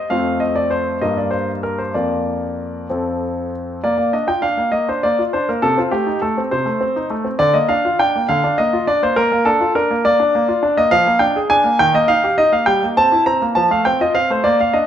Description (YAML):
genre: classical-period piano sonatina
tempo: 68 BPM (dotted quarters)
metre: 6/8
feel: rubato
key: Bb major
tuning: A4 = 440 Hz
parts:
  - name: clear grand piano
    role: solo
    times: 0.0-14.9 s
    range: F2 to Bb5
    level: -14 LUFS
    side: equal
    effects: none
room: moderate recital hall reverb, RT60 1.5 s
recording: dark, warm production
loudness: -14 LUFS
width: side -9 dB against mid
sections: 0.0-3.8 A section; 3.8-14.9 B section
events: none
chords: 0.1 F; 1.0 Gm; 1.9 Bb/F; 2.9 F; 3.8 Bb; 5.6 Cm6; 7.4 Bb/D; 9.2 Bb; 10.9 Bb7/F; 11.8 Eb; 12.7 C7/G; 13.5 F